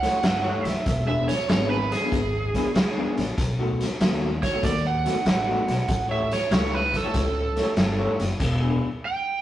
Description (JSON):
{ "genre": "electric blues shuffle", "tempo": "96 BPM", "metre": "4/4", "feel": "swing 68% on 8ths", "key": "unclear", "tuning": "A4 = 441 Hz", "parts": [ { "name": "overdriven slide guitar", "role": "second line", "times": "0.0-9.4 s", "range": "G#4 to G5", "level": "-26 LUFS", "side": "right 4 dB", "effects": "none" }, { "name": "electric guitar through a small old amp", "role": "riff", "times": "0.0-8.9 s", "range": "B2 to C#5", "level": "-29 LUFS", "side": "left 3 dB", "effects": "tremolo" }, { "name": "upright bass", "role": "bass", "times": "0.0-8.8 s", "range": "E1 to D#2", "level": "-28 LUFS", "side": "equal", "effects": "none" }, { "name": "raw garage drum kit", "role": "drums", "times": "0.0-8.6 s", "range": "crash cymbal, hi-hat, kick drum, snare drum", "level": "-25 LUFS", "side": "equal", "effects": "none" } ], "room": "moderate stone room reverb, RT60 1.3 s", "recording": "rough rehearsal-room recording, tube saturation, nothing above 11.0 kHz", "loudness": "-21 LUFS", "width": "side -13 dB against mid", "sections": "0.0-9.4 A section", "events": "electric slide guitar solo 0.0-9.4", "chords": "0.0 A7; 0.9 E7; 3.4 B7; 5.9 A7; 8.4 E7" }